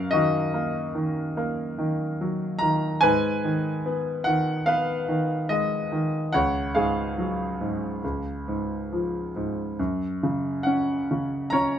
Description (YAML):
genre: classical, lyrical solo piano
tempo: 68-74 BPM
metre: 4/4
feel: rubato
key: unclear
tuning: A4 = 442 Hz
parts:
  - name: clear grand piano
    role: solo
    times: 0.0-11.8 s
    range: C#2 to A#5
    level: -23 LUFS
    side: equal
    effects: none
room: light reverb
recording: minimal, uncompressed stereo recording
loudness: -23 LUFS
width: side -9 dB against mid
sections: 0.0-11.8 A section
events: none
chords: 0.0 D#m/F#; 3.0 G#m; 6.3 C#sus4; 8.0 C#; 9.8 F#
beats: 0.53 1.37 2.20 | 3.03 3.85 4.67 5.49 | 6.33 7.17 8.03 8.91 | 9.78 10.66 11.52